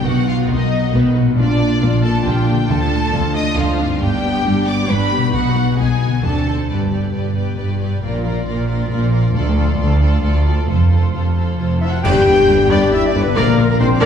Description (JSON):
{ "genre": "cinematic, heroic adventure film score", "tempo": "136 BPM", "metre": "3/4", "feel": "straight", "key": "unclear", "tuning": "A4 = 440 Hz", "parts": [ { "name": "rich symphonic violin section", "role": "melody", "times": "0.0-14.1 s", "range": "Bb4 to Eb6", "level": "-26 LUFS", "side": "left 2 dB", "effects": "none" }, { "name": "rich studio violin section", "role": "second line", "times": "0.0-14.1 s", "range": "B3 to G5", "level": "-27 LUFS", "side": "left 1 dB", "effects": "none" }, { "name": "clear symphonic viola section", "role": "accompaniment", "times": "0.0-14.1 s", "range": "D#3 to D5", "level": "-24 LUFS", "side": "equal", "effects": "none" }, { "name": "mellow French horn section", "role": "sustained chords", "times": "0.0-6.5, 11.8-14.1 s", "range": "Bb3 to G4", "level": "-20 LUFS", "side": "left 3 dB", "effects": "none" }, { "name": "concert harp", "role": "arpeggios", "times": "0.0-14.1 s", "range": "G2 to G5", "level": "-23 LUFS", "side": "left 5 dB", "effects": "none" }, { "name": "rich symphonic cello section", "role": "bass", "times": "0.1-14.1 s", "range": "D2 to D3", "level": "-20 LUFS", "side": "right 1 dB", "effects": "none" }, { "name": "warm symphonic double bass section", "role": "bass", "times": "0.1-14.1 s", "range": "F1 to D2", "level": "-20 LUFS", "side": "right 1 dB", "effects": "none" }, { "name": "timpani", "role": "percussion", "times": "6.7-7.3, 12.0-12.7 s", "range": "G2", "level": "-25 LUFS", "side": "equal", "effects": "none" }, { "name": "cymbal swell, clash cymbals and concert bass drum", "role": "percussion", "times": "9.3-12.9 s", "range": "none", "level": "-26 LUFS", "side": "left 1 dB", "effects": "none" }, { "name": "clear clarinet", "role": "second line", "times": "11.8-14.1 s", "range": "Bb4 to G5", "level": "-29 LUFS", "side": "left 2 dB", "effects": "none" }, { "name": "concert flute", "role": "second line", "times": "11.8-14.1 s", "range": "Bb4 to G5", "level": "-28 LUFS", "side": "left 1 dB", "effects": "none" }, { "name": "warm oboe", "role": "second line", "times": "11.8-14.1 s", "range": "Bb4 to G5", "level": "-27 LUFS", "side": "equal", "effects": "none" }, { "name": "dark trumpet section", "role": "stabs", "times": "11.8-14.1 s", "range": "Bb4 to G5", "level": "-26 LUFS", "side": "left 1 dB", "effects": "none" }, { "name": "clear trombone section", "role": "sustained chords", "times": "12.0-14.1 s", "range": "F3 to D4", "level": "-26 LUFS", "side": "equal", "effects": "none" }, { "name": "warm tuba", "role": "bass", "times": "12.0-14.1 s", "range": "G1 to Bb1", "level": "-24 LUFS", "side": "right 2 dB", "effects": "none" } ], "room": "wet scoring stage reverb, RT60 2.0 s", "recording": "heard from further back in the room", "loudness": "-14 LUFS", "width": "side -8 dB against mid", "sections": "0.0-6.7 A section; 6.7-12.0 B section; 12.0-14.1 C section", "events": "band accent 12.0-12.5", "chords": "0.1 B; 1.4 Bb; 2.7 Dm; 4.0 G; 5.3 B; 6.2 D7; 6.7 G; 8.0 Bb; 9.3 Dm; 10.7 F; 12.0 G; 13.4 Bb" }